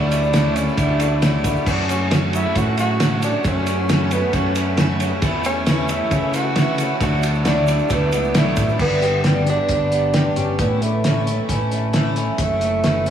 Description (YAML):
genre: folk rock and heartland rock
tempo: 134 BPM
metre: 4/4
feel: straight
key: unclear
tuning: A4 = 440 Hz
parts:
  - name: breathy tenor saxophone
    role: melody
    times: 0.0-13.1 s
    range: A3 to F#4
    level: -23 LUFS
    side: right 1 dB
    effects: analog delay
  - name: picked twelve-string acoustic guitar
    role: accompaniment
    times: 0.0-13.1 s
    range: F#2 to G4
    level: -26 LUFS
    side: left 4 dB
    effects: lush chorus
  - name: tonewheel organ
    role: sustained chords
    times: 0.0-8.8 s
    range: F#4 to D6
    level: -33 LUFS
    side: right 1 dB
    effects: none
  - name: electric guitar through a small old amp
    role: riff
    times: 0.0-13.1 s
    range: F#2 to G4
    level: -26 LUFS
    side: right 2 dB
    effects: wide subtle chorus
  - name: picked electric bass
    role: bass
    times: 0.0-13.1 s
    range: F#1 to C#3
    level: -22 LUFS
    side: equal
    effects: none
  - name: cloth-damped thuddy drum kit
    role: drums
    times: 0.1-13.1 s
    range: crash cymbal, hi-hat, kick drum, ride cymbal, snare drum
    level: -22 LUFS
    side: right 1 dB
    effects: none
  - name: tube shaker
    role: percussion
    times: 0.1-8.7 s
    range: none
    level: -41 LUFS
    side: right 6 dB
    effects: none
room: moderate huge ambient reverb, RT60 4.4 s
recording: dreamy mix soaked in reverb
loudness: -16 LUFS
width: side -9 dB against mid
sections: 0.0-8.8 A section; 8.8-13.1 B section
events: none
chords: 0.0 Dadd9; 1.7 F#m; 5.2 A/E; 7.0 Dadd9; 8.8 G; 10.6 A; 12.4 F#m7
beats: 0.34 0.78 1.23 | 1.67 2.11 2.56 3.00 | 3.45 3.89 4.34 4.78 | 5.23 5.67 6.12 6.57 | 7.01 7.46 7.91 8.35 | 8.80 9.25 9.70 10.15 | 10.60 11.05 11.49 11.94 | 12.39 12.84